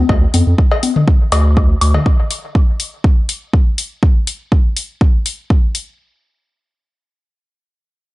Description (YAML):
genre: minimal techno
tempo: 122 BPM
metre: 4/4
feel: straight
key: D minor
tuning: A4 = 440 Hz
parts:
  - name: saturated sub bass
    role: bass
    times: 0.0-2.0 s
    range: D2 to F2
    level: -12 LUFS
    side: equal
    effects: sidechain pumping
  - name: electronic kick drum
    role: drums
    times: 0.1-5.6 s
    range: none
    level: -12 LUFS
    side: equal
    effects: overdrive, small room ambience
  - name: electronic cowbell, congas, toms and woodblock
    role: percussion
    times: 0.1-2.0 s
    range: none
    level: -18 LUFS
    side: left 3 dB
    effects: small room ambience, dub echo
  - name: electronic hi-hat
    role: drums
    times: 0.3-5.9 s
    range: none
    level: -21 LUFS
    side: left 3 dB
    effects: overdrive, small room ambience
room: little or no reverb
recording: echo-heavy mix, nothing above 10.7 kHz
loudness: -12 LUFS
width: side -19 dB against mid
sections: 0.0-6.0 A section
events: none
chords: none